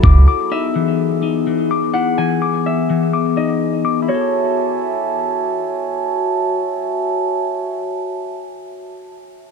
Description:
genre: hip hop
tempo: 126 BPM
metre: 4/4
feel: half-time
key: F# dorian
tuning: A4 = 440 Hz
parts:
  - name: Celtic harp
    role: melody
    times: 0.0-6.0 s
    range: C#5 to B5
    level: -25 LUFS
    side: right 3 dB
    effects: low-pass filter, ping-pong delay
  - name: glass harmonica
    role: sustained chords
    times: 0.0-7.8 s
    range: B3 to A5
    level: -20 LUFS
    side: left 1 dB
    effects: sidechain pumping, low-pass filter
  - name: clean electric guitar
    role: arpeggios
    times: 0.0-7.9 s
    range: E3 to D6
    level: -21 LUFS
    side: left 8 dB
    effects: low-pass filter, ping-pong delay
room: light reverb, digital ambience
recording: dark, warm production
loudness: -16 LUFS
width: side -5 dB against mid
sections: 0.0-4.1 A section; 4.1-7.9 B section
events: filter sweep 0.0-4.1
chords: 0.3 Emaj7; 4.1 F#m7

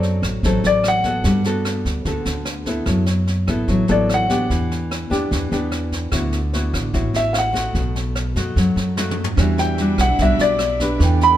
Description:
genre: bossa nova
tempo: 148 BPM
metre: 4/4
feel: straight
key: D major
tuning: A4 = 440 Hz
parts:
  - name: warm baby grand piano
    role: melody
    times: 0.0-1.4, 3.9-4.7, 7.2-11.4 s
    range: D5 to B5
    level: -19 LUFS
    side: left 1 dB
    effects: none
  - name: nylon-string guitar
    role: accompaniment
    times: 0.0-11.4 s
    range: A2 to B4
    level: -22 LUFS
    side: left 1 dB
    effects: none
  - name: upright bass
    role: bass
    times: 0.0-11.4 s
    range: A1 to G2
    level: -22 LUFS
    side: right 1 dB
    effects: none
  - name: jazz brush drum kit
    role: drums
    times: 0.0-11.3 s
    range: kick drum, rim click, snare drum, toms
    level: -26 LUFS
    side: equal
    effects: none
  - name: bell-like tine electric piano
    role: accompaniment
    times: 9.4-11.4 s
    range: D4 to G5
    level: -27 LUFS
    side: right 9 dB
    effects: none
  - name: warm studio string section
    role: sustained chords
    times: 9.4-11.4 s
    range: B3 to E5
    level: -30 LUFS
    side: equal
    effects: none
room: moderate stone room reverb, RT60 1.2 s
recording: band playing live in one room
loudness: -17 LUFS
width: side -12 dB against mid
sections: 0.0-11.4 A section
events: grand piano solo 0.0-11.4; drum fill 9.0-9.4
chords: 0.0 D7b9; 1.2 Gmaj9; 2.9 D69; 4.5 Em7; 6.1 D69; 7.8 B7; 9.4 Em9

